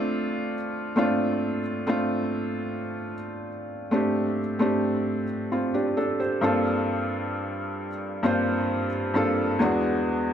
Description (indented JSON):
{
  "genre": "R&B",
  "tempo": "66 BPM",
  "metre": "4/4",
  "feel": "straight",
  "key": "unclear",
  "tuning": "A4 = 440 Hz",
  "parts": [
    { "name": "felt-muted upright piano", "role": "solo", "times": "0.0-10.3 s", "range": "E2 to C5", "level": "-24 LUFS", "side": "equal", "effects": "ping-pong delay" }
  ],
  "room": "moderate recital hall reverb, RT60 1.4 s, small room ambience",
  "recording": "none",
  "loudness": "-24 LUFS",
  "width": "side -9 dB against mid",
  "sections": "0.0-10.3 A section",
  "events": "none",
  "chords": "0.0 Dm7; 6.4 Gm11; 9.6 E7",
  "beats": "0.51 1.42 2.32 | 3.23 4.14 5.05 5.96 | 6.87 7.78 8.69 9.60"
}